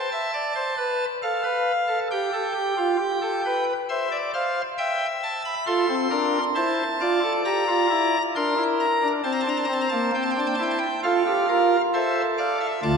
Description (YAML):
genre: classical, baroque-style 4-part fugue for pipe organ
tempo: 67 BPM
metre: 4/4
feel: straight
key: F major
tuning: A4 = 440 Hz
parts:
  - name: pipe organ, cornet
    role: solo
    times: 0.0-13.0 s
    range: D2 to C6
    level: -21 LUFS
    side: equal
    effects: none
room: wet church reverb, RT60 3.0 s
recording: recorded in a church or concert hall, nothing above 10.3 kHz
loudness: -21 LUFS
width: side -5 dB against mid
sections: 0.0-12.8 A section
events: none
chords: 0.3 Dm; 2.1 G7; 3.9 C; 5.7 F; 7.4 Gm; 9.2 C7; 11.0 F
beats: 0.34 1.23 | 2.11 3.00 3.89 4.78 | 5.67 6.56 7.45 8.34 | 9.24 10.14 11.03 11.93 | 12.84